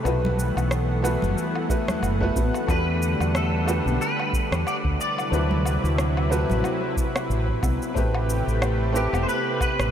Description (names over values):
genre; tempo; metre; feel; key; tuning
sunset chillout; 91 BPM; 4/4; swing 57% on 16ths; E minor; A4 = 440 Hz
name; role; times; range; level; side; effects
bright grand piano; accompaniment; 0.0-9.9 s; A3 to B4; -28 LUFS; left 1 dB; auto-pan, vintage 12-bit sampler grit, ping-pong delay
lush unison pad; sustained chords; 0.0-9.9 s; C3 to F#5; -28 LUFS; equal; chorus
mellow fretless electric bass; bass; 0.1-9.9 s; E1 to E2; -24 LUFS; equal; none
electronic woodblock, shaker and rim click; drums; 0.1-9.9 s; none; -33 LUFS; equal; overdrive
congas; percussion; 0.2-9.2 s; none; -35 LUFS; left 1 dB; none
electronic kick drum; drums; 1.7-9.8 s; none; -26 LUFS; equal; none
clean electric guitar; melody; 2.7-9.9 s; G4 to D5; -30 LUFS; left 1 dB; ensemble chorus, tape echo
room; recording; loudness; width
moderate huge ambient reverb, RT60 8.2 s; dreamy mix soaked in reverb; -21 LUFS; side -9 dB against mid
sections
0.0-9.9 A section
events
none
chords
0.0 B7sus4; 2.7 Em11; 5.0 D13; 8.0 Am9